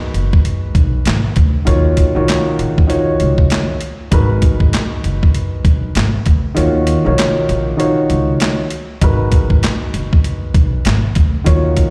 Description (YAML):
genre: hip hop, boom-bap hip-hop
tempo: 98 BPM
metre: 4/4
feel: swing 60% on 16ths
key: G# minor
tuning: A4 = 439 Hz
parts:
  - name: dark grand piano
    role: accompaniment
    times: 0.0-11.9 s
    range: D#3 to C#5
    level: -21 LUFS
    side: equal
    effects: cassette tape, high-pass filter, low-pass filter
  - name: upright bass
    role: bass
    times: 0.1-11.8 s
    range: F#1 to D#2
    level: -19 LUFS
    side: equal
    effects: none
  - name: boom bap sampler-style drum kit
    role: drums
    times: 0.1-11.9 s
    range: handclaps, hi-hat, kick drum, snare drum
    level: -16 LUFS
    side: equal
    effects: none
room: small room ambience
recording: played on a big sound system in a bare room, large studio reverb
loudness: -14 LUFS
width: mono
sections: 0.0-11.9 A section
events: kick muted 6.6-9.0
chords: 0.0 G#m9; 1.7 D#m9; 4.1 G#m9; 6.6 D#m9; 9.0 G#m9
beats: 0.45 1.06 | 1.67 2.28 2.89 3.51 | 4.12 4.73 5.34 5.96 | 6.57 7.18 7.79 8.40 | 9.02 9.63 10.24 10.85 | 11.47